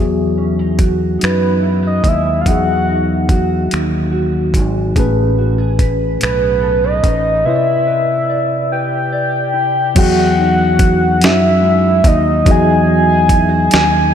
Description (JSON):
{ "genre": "slow six-eight R&B", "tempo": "48 BPM (dotted quarters)", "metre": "6/8", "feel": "straight", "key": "E major", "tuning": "A4 = 440 Hz", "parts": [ { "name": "mellow electric guitar", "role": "second line", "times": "0.0-14.1 s", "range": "E3 to D5", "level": "-21 LUFS", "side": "right 4 dB", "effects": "analog chorus, analog delay" }, { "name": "tine electric piano", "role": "accompaniment", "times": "0.0-14.1 s", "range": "A2 to F#5", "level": "-19 LUFS", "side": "left 3 dB", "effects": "none" }, { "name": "fingered electric bass", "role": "bass", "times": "0.0-14.1 s", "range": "G#1 to F#2", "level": "-16 LUFS", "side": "equal", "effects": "none" }, { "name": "dusty soul sampler-style drum kit", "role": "drums", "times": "0.8-13.9 s", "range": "crash cymbal, finger snaps, hi-hat, kick drum, snare drum", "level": "-16 LUFS", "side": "equal", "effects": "none" }, { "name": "soft octave-layered synth lead", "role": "melody", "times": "1.2-14.1 s", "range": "B4 to G#5", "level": "-16 LUFS", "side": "equal", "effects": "chorus, analog delay" } ], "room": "wet cathedral reverb, RT60 4.0 s", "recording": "dreamy mix soaked in reverb", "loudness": "-11 LUFS", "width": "side -8 dB against mid", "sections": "0.0-10.0 A section; 10.0-14.1 B section", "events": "none", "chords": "0.0 Emaj9; 5.0 Amaj9; 7.5 Cmaj9; 10.0 Emaj9" }